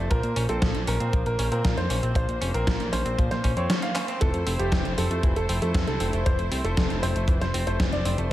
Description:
italo disco; 117 BPM; 4/4; straight; F major; A4 = 440 Hz
bright baby grand piano; melody; 0.0-8.2 s; G4 to F5; -30 LUFS; right 1 dB; tape echo
clear symphonic string section; sustained chords; 0.0-8.3 s; A3 to C5; -34 LUFS; left 1 dB
direct-recorded clean electric guitar; arpeggios; 0.0-8.3 s; E3 to Db4; -35 LUFS; right 2 dB; tape echo
fat analog bass; bass; 0.0-8.3 s; F1 to Bb2; -27 LUFS; equal
gated 80s digital drum machine; drums; 0.1-8.3 s; handclaps, hi-hat, snare drum; -29 LUFS; equal; gated reverb, gated reverb snare
kick drum; drums; 0.1-7.9 s; -25 LUFS; equal
light reverb, small room reverb; -22 LUFS; side -14 dB against mid
0.0-8.3 A section
drum fill 4.0
0.1 Bbmadd9; 4.2 Fmaj7
| 0.10 0.62 1.13 1.64 | 2.16 2.67 3.18 3.69 | 4.21 4.72 5.23 5.75 | 6.26 6.77 7.29 7.80 | 8.31

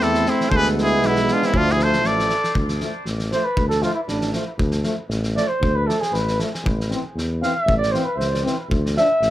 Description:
balkan folk, Balkan brass band; 117 BPM; 2/4; swing 53% on 16ths; D dorian sharp4; A4 = 438 Hz
bright trumpet; melody; 0.0-2.6 s; E4 to D5; -22 LUFS; left 1 dB; plate reverb, tape echo
mellow flugelhorn; second line; 0.0-9.3 s; B3 to F5; -23 LUFS; right 1 dB; tape echo
mellow euphonium; accompaniment; 0.0-9.1 s; E3 to A3; -27 LUFS; right 6 dB
warm French horn; accompaniment; 0.0-9.1 s; A3 to D4; -26 LUFS; left 4 dB
mellow tuba; bass; 0.0-9.3 s; A1 to E2; -23 LUFS; equal
loose indie drum kit; percussion; 0.0-9.3 s; kick drum, snare drum; -27 LUFS; equal
light reverb; -18 LUFS; side -14 dB against mid
0.0-2.6 A section; 2.6-9.3 B section
flugelhorn solo 2.6-9.3
0.0 Am; 0.5 E7; 1.5 Dm; 6.7 Am; 8.7 Dm
0.01 | 0.52 1.02 | 1.53 2.05 | 2.56 3.07 | 3.58 4.09 | 4.61 5.12 | 5.63 6.15 | 6.66 7.18 | 7.69 8.21 | 8.72 9.23

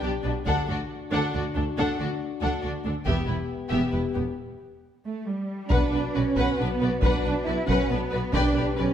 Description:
cinematic, epic orchestral film score; 138 BPM; 3/4; straight; B minor; A4 = 440 Hz
rich symphonic violin section; melody; 0.0-8.9 s; G4 to G5; -36 LUFS; left 3 dB
warm symphonic violin section; second line; 0.0-8.9 s; B3 to D5; -33 LUFS; left 4 dB
rich symphonic viola section; accompaniment; 0.0-8.8 s; B3 to B4; -32 LUFS; right 1 dB
mellow French horn section; sustained chords; 0.0-8.9 s; B3 to B4; -33 LUFS; left 4 dB
rich symphonic double bass section; bass; 0.0-8.9 s; E1 to D2; -30 LUFS; right 2 dB
warm symphonic cello section; bass; 0.0-8.9 s; D2 to E4; -29 LUFS; right 3 dB
taiko ensemble; drums; 0.5-8.7 s; -28 LUFS; left 1 dB
mellow tuba; bass; 5.7-8.9 s; B1; -32 LUFS; right 2 dB
timpani; percussion; 8.3-8.9 s; B2; -33 LUFS; left 1 dB
moderate scoring stage reverb, RT60 1.7 s; -23 LUFS; side -9 dB against mid
0.0-5.7 A section; 5.7-8.9 B section
build-up 0.0-5.7; break 4.4-5.7
0.5 D; 3.1 Em; 5.7 Bm; 8.3 G/B
0.04 | 0.47 0.90 1.34 | 1.77 2.21 2.64 | 3.07 3.50 3.94 | 4.38 4.83 5.27 | 5.72 6.16 6.59 | 7.03 7.47 7.90 | 8.34 8.77

